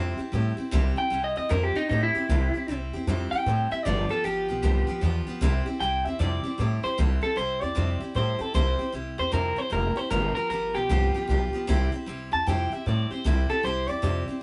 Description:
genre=rockabilly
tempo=153 BPM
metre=4/4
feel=swing 64% on 8ths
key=C major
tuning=A4 = 438 Hz
part: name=picked steel-string acoustic guitar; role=accompaniment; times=0.0-14.4 s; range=G2 to G4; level=-34 LUFS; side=equal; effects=none
part: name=upright bass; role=bass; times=0.0-14.3 s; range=F1 to A2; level=-29 LUFS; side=equal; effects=none
part: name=electric guitar through a small old amp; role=melody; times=1.0-14.4 s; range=Eb4 to A5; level=-30 LUFS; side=equal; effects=none
room=light reverb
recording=band playing live in one room, nothing above 11.0 kHz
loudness=-26 LUFS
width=mono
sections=0.0-7.0 A section; 7.0-14.4 B section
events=clean electric guitar solo 0.0-7.0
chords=0.0 C; 3.9 G7; 5.4 C; 10.1 G7; 11.7 C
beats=0.33 | 0.72 1.11 1.51 1.90 | 2.29 2.68 3.07 3.46 | 3.85 4.25 4.63 5.03 | 5.42 5.81 6.20 6.59 | 6.98 7.37 7.76 8.16 | 8.55 8.94 9.33 9.72 | 10.12 10.51 10.90 11.29 | 11.68 12.08 12.47 12.86 | 13.25 13.64 14.04

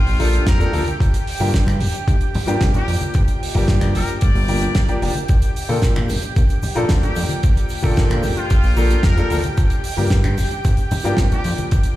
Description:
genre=nu-disco, nu disco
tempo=112 BPM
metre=4/4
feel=straight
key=G minor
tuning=A4 = 440 Hz
part: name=muted trumpet section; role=melody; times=0.0-11.5 s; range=F4 to D5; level=-30 LUFS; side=left 2 dB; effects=ping-pong delay
part: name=clear baby grand piano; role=accompaniment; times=0.0-12.0 s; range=F3 to A4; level=-25 LUFS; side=left 2 dB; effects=sidechain pumping, ping-pong delay
part: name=lush unison pad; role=sustained chords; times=0.0-12.0 s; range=G4 to G5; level=-29 LUFS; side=right 1 dB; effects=chorus, vintage 12-bit sampler grit, sidechain pumping
part: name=fat analog bass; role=bass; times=0.0-11.8 s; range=F1 to Bb2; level=-19 LUFS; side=equal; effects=tube saturation
part: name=damped 70s drum kit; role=drums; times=0.1-11.9 s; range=finger snaps, hi-hat, snare drum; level=-27 LUFS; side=right 2 dB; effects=small room ambience
part: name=bongos, congas and egg shaker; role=percussion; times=0.1-12.0 s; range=none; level=-26 LUFS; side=left 1 dB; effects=none
part: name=electronic kick drum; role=drums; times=0.5-11.8 s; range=none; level=-17 LUFS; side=equal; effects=small room ambience
room=little or no reverb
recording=played on a big sound system in a bare room, large studio reverb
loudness=-15 LUFS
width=side -15 dB against mid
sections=0.0-12.0 A section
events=none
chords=0.0 Bbmaj7; 1.0 Gm7; 5.3 Bbmaj7; 9.6 Gm7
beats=0.47 | 1.00 1.54 2.08 2.61 | 3.15 3.68 4.22 4.75 | 5.29 5.83 6.36 6.90 | 7.43 7.97 8.50 9.04 | 9.57 10.11 10.65 11.18 | 11.72

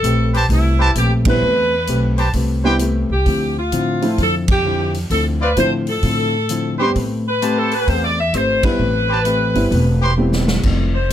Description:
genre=jazz, big band swing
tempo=130 BPM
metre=4/4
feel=swing 65% on 8ths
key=A minor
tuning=A4 = 441 Hz
part: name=bright saxophone section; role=melody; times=0.0-11.1 s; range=E4 to E5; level=-19 LUFS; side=equal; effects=none
part: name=hollow-body jazz guitar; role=accompaniment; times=0.0-11.1 s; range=D3 to B4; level=-23 LUFS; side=left 5 dB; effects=none
part: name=upright bass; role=bass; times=0.0-11.1 s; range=E1 to A2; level=-19 LUFS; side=equal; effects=none
part: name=swinging big-band drum kit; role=drums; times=0.0-11.1 s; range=crash cymbal, hi-hat, kick drum, ride cymbal, snare drum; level=-23 LUFS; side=right 1 dB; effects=none
part: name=clear trumpet section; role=stabs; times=0.3-10.1 s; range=E4 to C6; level=-21 LUFS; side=right 1 dB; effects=none
part: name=warm upright piano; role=accompaniment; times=1.3-10.6 s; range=F3 to G4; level=-21 LUFS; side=right 1 dB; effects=none
room=light reverb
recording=close, detailed microphones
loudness=-14 LUFS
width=side -11 dB against mid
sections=0.0-11.1 A section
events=band accent 1.2, 4.4, 8.6; drum fill 10.2-10.6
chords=0.0 Am9; 3.3 Dm9; 7.0 Am9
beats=0.04 0.50 0.96 | 1.42 1.88 2.34 2.80 | 3.26 3.72 4.18 4.65 | 5.11 5.57 6.03 6.49 | 6.95 7.41 7.87 8.33 | 8.79 9.26 9.72 10.18 | 10.64 11.10

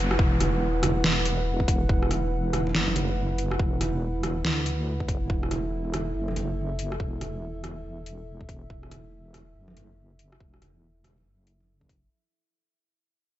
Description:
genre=deep dubstep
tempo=141 BPM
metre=4/4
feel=swing 62% on 16ths, half-time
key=unclear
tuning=A4 = 440 Hz
part: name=dark analog pad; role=sustained chords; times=0.0-12.1 s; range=E4 to F#5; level=-32 LUFS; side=right 2 dB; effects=chorus
part: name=deep soft wobble bass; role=bass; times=0.0-12.1 s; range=E1 to D2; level=-29 LUFS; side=equal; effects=chorus
part: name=downlifter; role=sound effects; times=0.0-1.9 s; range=none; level=-36 LUFS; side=equal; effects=none
part: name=dubstep drum kit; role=drums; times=0.1-12.0 s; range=hi-hat, rim click, snare drum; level=-29 LUFS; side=equal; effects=overdrive
part: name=electronic kick drum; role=drums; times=0.2-12.0 s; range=none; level=-26 LUFS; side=equal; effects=overdrive
part: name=congas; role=percussion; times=0.4-11.9 s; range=none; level=-34 LUFS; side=right 3 dB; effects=dub echo
room=light reverb, digital ambience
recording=nothing above 7.8 kHz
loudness=-24 LUFS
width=side -13 dB against mid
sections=0.0-12.1 A section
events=fade-out 0.0-12.1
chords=0.0 E5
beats=| 0.19 0.62 1.04 1.47 | 1.89 2.32 2.74 3.17 | 3.59 4.02 4.45 4.87 | 5.30 5.72 6.15 6.57 | 7.00 7.42 7.85 8.28 | 8.70 9.13 9.55 9.98 | 10.40 10.83 11.25 11.68

